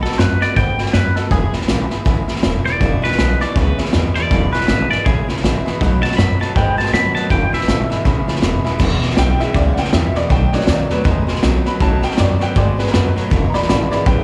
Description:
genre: rockabilly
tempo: 160 BPM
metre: 4/4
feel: swing 59% on 8ths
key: E major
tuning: A4 = 441 Hz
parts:
  - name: twangy electric guitar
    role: melody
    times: 0.0-8.6 s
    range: G#4 to B5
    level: -23 LUFS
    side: equal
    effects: phaser, slapback echo, tape echo
  - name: honky-tonk upright piano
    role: accompaniment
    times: 0.0-14.2 s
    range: G#3 to C#6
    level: -27 LUFS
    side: equal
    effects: none
  - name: picked steel-string acoustic guitar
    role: accompaniment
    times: 0.0-14.2 s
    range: E2 to F#4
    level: -29 LUFS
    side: equal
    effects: none
  - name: upright bass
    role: bass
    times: 0.0-14.2 s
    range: E1 to B2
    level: -21 LUFS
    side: equal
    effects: none
  - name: vintage drum kit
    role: drums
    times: 0.0-14.2 s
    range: crash cymbal, hi-hat, kick drum, snare drum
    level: -21 LUFS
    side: equal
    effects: none
  - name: twangy electric guitar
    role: riff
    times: 2.8-14.2 s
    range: E2 to G#3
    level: -25 LUFS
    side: equal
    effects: none
room: small room ambience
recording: live gig heard through the venue's PA, club reverb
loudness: -16 LUFS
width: mono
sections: 0.0-8.8 A section; 8.8-14.2 B section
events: honky-tonk piano solo 8.8-14.2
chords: 0.0 B7; 1.3 E; 5.8 B7; 7.3 E; 10.3 B7; 13.3 E

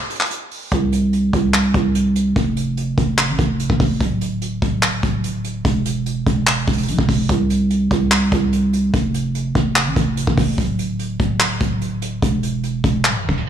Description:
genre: hip hop, trap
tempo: 146 BPM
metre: 4/4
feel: half-time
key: unclear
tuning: A4 = 445 Hz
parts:
  - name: vintage brush drum kit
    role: drums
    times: 0.1-13.5 s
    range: handclaps, hi-hat, kick drum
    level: -19 LUFS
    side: equal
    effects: none
  - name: growling 808-style bass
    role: bass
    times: 0.7-13.5 s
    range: D1 to C2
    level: -18 LUFS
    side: right 1 dB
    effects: none
room: little or no reverb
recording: tape stop, studio ambience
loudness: -16 LUFS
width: side -9 dB against mid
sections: 0.0-13.5 A section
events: break 0.0-0.7; tape stop 13.0-13.5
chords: none

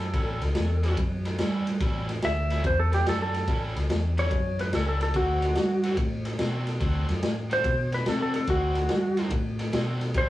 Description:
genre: electric blues shuffle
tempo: 144 BPM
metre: 4/4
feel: swing 67% on 8ths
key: unclear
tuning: A4 = 442 Hz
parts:
  - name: clean lap steel guitar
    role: melody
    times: 0.0-10.3 s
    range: F#4 to E5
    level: -27 LUFS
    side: equal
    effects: none
  - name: overdriven electric guitar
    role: riff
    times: 0.0-10.3 s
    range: A2 to F#4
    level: -37 LUFS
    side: equal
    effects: none
  - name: fingered electric bass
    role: bass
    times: 0.0-10.3 s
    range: A1 to C3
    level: -28 LUFS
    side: equal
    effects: none
  - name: raw garage drum kit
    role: drums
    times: 0.0-10.3 s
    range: kick drum, ride cymbal, snare drum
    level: -29 LUFS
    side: equal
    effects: none
room: moderate small room ambience, RT60 0.5 s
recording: rough rehearsal-room recording, small room ambience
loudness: -24 LUFS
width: side -15 dB against mid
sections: 0.0-10.3 A section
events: none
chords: 0.0 A7; 5.1 D7

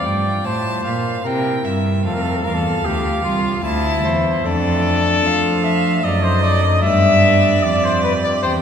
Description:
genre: classical, baroque-style sonata movement with continuo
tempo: 75 BPM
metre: 3/4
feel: straight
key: F major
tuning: A4 = 440 Hz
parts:
  - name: mellow trumpet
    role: melody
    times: 0.0-8.5 s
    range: E4 to E5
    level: -19 LUFS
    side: left 3 dB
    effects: none
  - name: rich violin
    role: second line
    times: 0.0-8.6 s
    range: C5 to A5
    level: -23 LUFS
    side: right 3 dB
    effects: none
  - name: pipe organ, foundations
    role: accompaniment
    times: 0.0-8.6 s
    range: C2 to A4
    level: -24 LUFS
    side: left 1 dB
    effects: none
  - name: rich cello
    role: bass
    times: 0.0-8.6 s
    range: C2 to F3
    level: -19 LUFS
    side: right 1 dB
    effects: none
room: wet church reverb, RT60 3.2 s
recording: recorded in a church or concert hall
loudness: -15 LUFS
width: side -8 dB against mid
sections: 0.0-8.6 A section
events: none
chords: 0.0 F; 1.2 C7; 2.0 F; 4.5 Dm/F; 6.0 F#dim7; 6.8 G

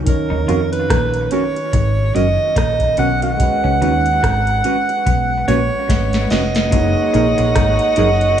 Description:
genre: lovers rock reggae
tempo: 72 BPM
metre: 4/4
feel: swing 58% on 16ths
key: F# major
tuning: A4 = 440 Hz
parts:
  - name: overdriven tine electric piano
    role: accompaniment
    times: 0.0-8.4 s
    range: D#3 to F#5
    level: -23 LUFS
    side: left 2 dB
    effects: tape echo
  - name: deep dub fingered electric bass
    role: bass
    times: 0.0-8.3 s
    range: E#1 to E#2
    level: -19 LUFS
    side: equal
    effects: none
  - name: clear alto saxophone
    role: melody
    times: 0.1-8.4 s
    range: A#4 to F#5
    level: -18 LUFS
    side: right 3 dB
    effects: tape echo
  - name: soft vintage rhythm box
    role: drums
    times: 0.1-8.4 s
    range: hi-hat, kick drum, rim click, snare drum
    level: -19 LUFS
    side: equal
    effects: gated reverb
  - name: electric guitar through a small old amp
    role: riff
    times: 0.3-8.2 s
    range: E#3 to E#4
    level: -28 LUFS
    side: left 3 dB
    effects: tape echo
  - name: mellow electric guitar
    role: stabs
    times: 0.5-8.3 s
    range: C#4 to B4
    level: -24 LUFS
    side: right 5 dB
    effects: tape echo
  - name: warm studio string section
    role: second line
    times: 6.7-8.4 s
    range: F#4 to F#5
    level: -25 LUFS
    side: left 3 dB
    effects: none
room: light reverb, digital ambience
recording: studio ambience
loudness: -14 LUFS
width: side -9 dB against mid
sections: 0.0-6.7 A section; 6.7-8.4 B section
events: drum fill 5.9-6.7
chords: 0.1 D#m7; 3.4 C#7sus4; 6.7 F#69

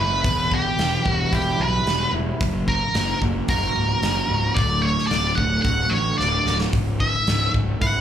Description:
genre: quiet-loud alternative rock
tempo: 111 BPM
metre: 4/4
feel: straight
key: unclear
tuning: A4 = 440 Hz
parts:
  - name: octave-fuzz lead guitar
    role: melody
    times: 0.0-8.0 s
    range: G4 to F#5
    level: -22 LUFS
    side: right 1 dB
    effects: distortion, slapback echo
  - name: electric guitar through a small old amp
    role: arpeggios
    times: 0.0-8.0 s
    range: C#2 to F#4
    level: -28 LUFS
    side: right 1 dB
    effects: tremolo, slapback echo
  - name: fuzz picked electric bass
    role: bass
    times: 0.0-8.0 s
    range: C#1 to B1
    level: -24 LUFS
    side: equal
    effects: overdrive
  - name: huge arena drum kit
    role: drums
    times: 0.2-7.9 s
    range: hi-hat, kick drum, snare drum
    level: -26 LUFS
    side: equal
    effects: none
room: light reverb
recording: live gig heard through the venue's PA, club ambience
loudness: -19 LUFS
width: side -10 dB against mid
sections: 0.0-8.0 A section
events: drum fill 6.2-6.7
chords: 0.2 Em; 2.4 F#; 4.6 D; 6.7 C#m

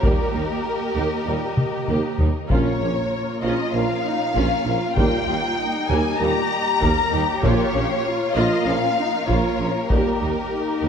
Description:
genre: cinematic, epic orchestral film score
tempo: 97 BPM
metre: 4/4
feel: straight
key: unclear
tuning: A4 = 439 Hz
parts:
  - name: warm studio violin section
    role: melody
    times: 0.0-10.9 s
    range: Bb4 to Bb5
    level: -26 LUFS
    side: left 5 dB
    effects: none
  - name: rich symphonic violin section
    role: second line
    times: 0.0-10.9 s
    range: Bb4 to Bb5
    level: -30 LUFS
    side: left 2 dB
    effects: none
  - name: rich symphonic viola section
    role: accompaniment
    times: 0.0-10.9 s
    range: F3 to G4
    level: -27 LUFS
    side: right 1 dB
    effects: none
  - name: mellow French horn section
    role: sustained chords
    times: 0.0-10.9 s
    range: Bb3 to Bb4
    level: -31 LUFS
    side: left 4 dB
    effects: none
  - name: warm symphonic string section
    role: sustained chords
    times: 0.0-10.9 s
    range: G3 to F5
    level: -29 LUFS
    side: equal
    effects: none
  - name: warm trombone section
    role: sustained chords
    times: 0.0-10.1 s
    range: Bb2 to G3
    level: -32 LUFS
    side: right 4 dB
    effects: none
  - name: rich studio cello section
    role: bass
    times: 0.0-10.9 s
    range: Db4 to Bb4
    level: -29 LUFS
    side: equal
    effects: none
  - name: rich symphonic double bass section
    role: bass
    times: 0.0-10.9 s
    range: Bb1 to Eb2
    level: -29 LUFS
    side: right 4 dB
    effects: none
  - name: warm tuba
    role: bass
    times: 0.0-10.9 s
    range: Bb1 to Eb2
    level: -28 LUFS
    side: right 4 dB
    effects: none
  - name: taiko ensemble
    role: drums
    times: 0.0-10.5 s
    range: none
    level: -23 LUFS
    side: equal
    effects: none
  - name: timpani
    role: percussion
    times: 2.5-3.4 s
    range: Bb2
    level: -30 LUFS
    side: equal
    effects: none
room: moderate scoring stage reverb, RT60 1.8 s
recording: dark, warm production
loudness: -19 LUFS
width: side -7 dB against mid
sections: 0.0-10.9 A section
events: drum fill 1.6-2.5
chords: 0.0 Eb; 2.5 Bbm; 5.0 Eb; 7.4 Bbm; 9.9 Eb

